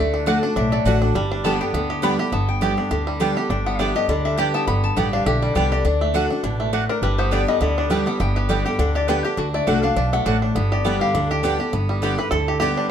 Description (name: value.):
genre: bluegrass.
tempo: 204 BPM.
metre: 4/4.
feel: swing 55% on 8ths.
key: G major.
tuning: A4 = 439 Hz.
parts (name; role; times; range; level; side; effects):
bluegrass banjo; melody; 0.0-12.9 s; G3 to B4; -25 LUFS; right 3 dB; none.
lap resonator guitar; second line; 0.0-11.4 s; F#4 to B5; -26 LUFS; left 7 dB; none.
picked steel-string acoustic guitar; accompaniment; 0.0-12.9 s; G2 to G4; -23 LUFS; left 1 dB; none.
upright bass; bass; 0.0-12.7 s; G1 to D2; -24 LUFS; equal; none.
mandolin; stabs; 0.3-12.7 s; A3 to G5; -27 LUFS; right 6 dB; none.
room: moderate studio reverb, RT60 0.8 s.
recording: dark, warm production.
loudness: -18 LUFS.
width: side -8 dB against mid.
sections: 0.0-2.3 A section; 2.3-11.7 A section; 11.7-12.9 A section.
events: resonator guitar played with a steel bar solo 0.0-11.7; five-string banjo solo 11.7-12.9.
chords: 0.0 D; 1.1 G; 5.9 D; 7.0 G; 9.4 D; 10.6 G.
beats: 0.27 0.56 0.86 | 1.15 1.44 1.74 2.03 | 2.33 2.62 2.91 3.21 | 3.50 3.79 4.09 4.38 | 4.68 4.97 5.26 5.56 | 5.85 6.14 6.44 6.73 | 7.03 7.32 7.62 7.91 | 8.20 8.50 8.79 9.09 | 9.38 9.67 9.97 10.26 | 10.55 10.85 11.14 11.44 | 11.73 12.02 12.32 12.61.